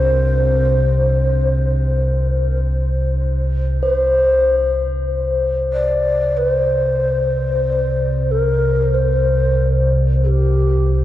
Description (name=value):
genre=dark ambient drone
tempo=free time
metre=none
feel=none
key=unclear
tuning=A4 = 441 Hz
part: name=breathy mellow long shakuhachi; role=melody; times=0.0-11.0 s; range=G4 to D5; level=-19 LUFS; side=left 1 dB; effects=ping-pong delay
part: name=deep dark ambient pad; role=sustained chords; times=0.0-3.8 s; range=D4 to G5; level=-41 LUFS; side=right 1 dB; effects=none
part: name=tubular bells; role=arpeggios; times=0.0-11.0 s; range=F4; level=-50 LUFS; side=right 1 dB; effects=none
part: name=deep rumbling drone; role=drone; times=0.0-11.0 s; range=C2 to C3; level=-17 LUFS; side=equal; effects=built-in reverb, lush chorus
part: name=quartz singing bowl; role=texture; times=3.8-11.0 s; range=C5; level=-24 LUFS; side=left 1 dB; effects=none
room=wet cathedral reverb, RT60 5.8 s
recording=worn, warbling old tape, cassette tape, warbly pitch drift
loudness=-15 LUFS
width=side -13 dB against mid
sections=0.0-3.8 A section; 3.8-11.0 B section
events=none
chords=0.0 Csus2; 3.8 N.C.